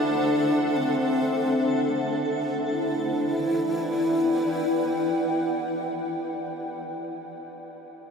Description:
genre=ambient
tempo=free time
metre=none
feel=none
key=E minor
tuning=A4 = 440 Hz
part: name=breathy mellow wooden-headed alto flute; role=melody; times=0.0-5.9 s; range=C4 to E4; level=-27 LUFS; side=left 1 dB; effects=ping-pong delay
part: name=granular cloud pad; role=sustained chords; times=0.0-6.5 s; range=D4 to G5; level=-26 LUFS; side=equal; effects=built-in reverb
part: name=analog drone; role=drone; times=0.7-5.9 s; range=E3 to E4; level=-46 LUFS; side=equal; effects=none
part: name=twinkling granular texture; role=texture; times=0.0-2.7 s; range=A4 to A5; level=-39 LUFS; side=right 1 dB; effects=built-in reverb
room=wet huge ambient reverb, RT60 8.9 s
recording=dreamy mix soaked in reverb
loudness=-23 LUFS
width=side -6 dB against mid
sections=0.0-2.7 A section; 2.7-6.5 B section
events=none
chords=0.0 D7; 2.7 Em7

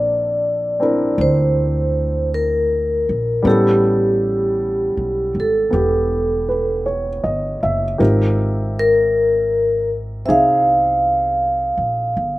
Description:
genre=jazz ballad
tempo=53 BPM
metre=4/4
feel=swing 68% on 8ths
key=unclear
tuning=A4 = 441 Hz
part: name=vibraphone with medium mallets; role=melody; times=0.0-12.4 s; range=G4 to F5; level=-17 LUFS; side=equal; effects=none
part: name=warm grand piano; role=accompaniment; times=0.0-12.4 s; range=F3 to E5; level=-22 LUFS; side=equal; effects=slapback echo
part: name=upright bass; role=bass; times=0.0-12.4 s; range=E1 to D2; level=-22 LUFS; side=equal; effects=none
room=little or no reverb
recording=recorded outdoors, with no room sound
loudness=-15 LUFS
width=side -17 dB against mid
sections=0.0-12.4 A section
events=none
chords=0.0 Bbadd9; 3.4 A9; 8.0 Abmaj13

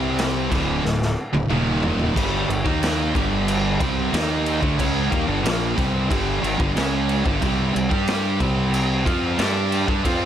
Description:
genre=stoner and doom metal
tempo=91 BPM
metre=4/4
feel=straight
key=unclear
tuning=A4 = 438 Hz
part: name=thick fuzz guitar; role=riff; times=0.0-10.3 s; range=D2 to G4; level=-24 LUFS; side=right 1 dB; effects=distortion
part: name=tight distorted guitar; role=riff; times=0.0-10.3 s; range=D2 to G4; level=-25 LUFS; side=right 1 dB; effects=distortion
part: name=fuzz fingered electric bass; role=bass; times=0.0-10.3 s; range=D1 to G2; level=-26 LUFS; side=equal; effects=overdrive
part: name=raw garage drum kit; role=drums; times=0.2-10.2 s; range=crash cymbal, kick drum, snare drum, toms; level=-24 LUFS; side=equal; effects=none
room=light reverb, studio ambience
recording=none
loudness=-19 LUFS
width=side -10 dB against mid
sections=0.0-10.3 A section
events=drum fill 0.8-2.2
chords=0.0 C5; 0.5 D5; 1.5 Eb5; 2.2 G5; 7.4 C5

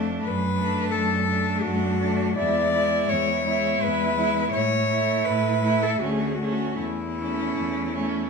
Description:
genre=classical, lyrical piece for cello ensemble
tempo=82 BPM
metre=3/4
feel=uneven beats, rubato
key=A major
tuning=A4 = 440 Hz
part: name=rich cello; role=second line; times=0.0-8.3 s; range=C#4 to E4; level=-27 LUFS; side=right 7 dB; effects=none
part: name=rich cello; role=accompaniment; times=0.0-8.3 s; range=G#3 to A3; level=-29 LUFS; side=left 5 dB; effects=none
part: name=rich cello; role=bass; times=0.0-8.2 s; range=D2 to A2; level=-28 LUFS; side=right 3 dB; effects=none
part: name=rich cello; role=melody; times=0.2-8.3 s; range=E4 to D5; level=-26 LUFS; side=left 5 dB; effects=none
room=moderate recital hall reverb, RT60 1.3 s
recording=minimal, uncompressed stereo recording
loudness=-21 LUFS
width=side -5 dB against mid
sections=0.0-8.3 A section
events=none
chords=0.2 D/F#; 2.4 E; 4.5 A; 6.0 D5; 6.8 A/E

